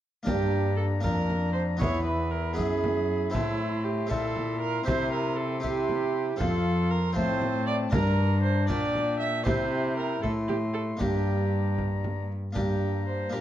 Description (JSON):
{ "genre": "classical, renaissance-style consort dance", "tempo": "78 BPM (dotted quarters)", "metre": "6/8", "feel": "straight", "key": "G dorian", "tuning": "A4 = 440 Hz", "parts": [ { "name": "harpsichord", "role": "accompaniment", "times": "0.2-13.4 s", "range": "E2 to Bb4", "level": "-34 LUFS", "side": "left 2 dB", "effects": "none" }, { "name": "bright oboe", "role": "melody", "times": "0.3-13.4 s", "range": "G5 to C6", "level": "-39 LUFS", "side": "left 5 dB", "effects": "none" }, { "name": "warm viola", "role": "second line", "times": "0.3-13.4 s", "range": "E4 to E5", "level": "-31 LUFS", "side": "right 6 dB", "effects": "none" }, { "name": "clear trombone", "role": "accompaniment", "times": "0.3-13.4 s", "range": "C4 to F4", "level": "-33 LUFS", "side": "left 4 dB", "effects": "none" }, { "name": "rich cello", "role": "bass", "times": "0.3-13.4 s", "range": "E2 to C3", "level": "-29 LUFS", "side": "equal", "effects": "none" }, { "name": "frame drum", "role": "percussion", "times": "0.3-12.8 s", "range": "none", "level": "-32 LUFS", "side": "right 1 dB", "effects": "none" } ], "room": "moderate large studio reverb, RT60 1.4 s", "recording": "dark, warm production", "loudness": "-25 LUFS", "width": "side -12 dB against mid", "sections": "0.3-12.6 A section", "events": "none", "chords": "0.3 Gm; 1.8 E; 3.3 Am; 4.9 C; 6.4 F; 7.9 Gm; 9.5 C; 11.0 Gm", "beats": "| 0.27 1.04 | 1.80 2.57 | 3.34 4.11 | 4.87 5.64 | 6.40 7.16 | 7.92 8.69 | 9.46 10.23 | 11.00 11.78 | 12.56 13.33" }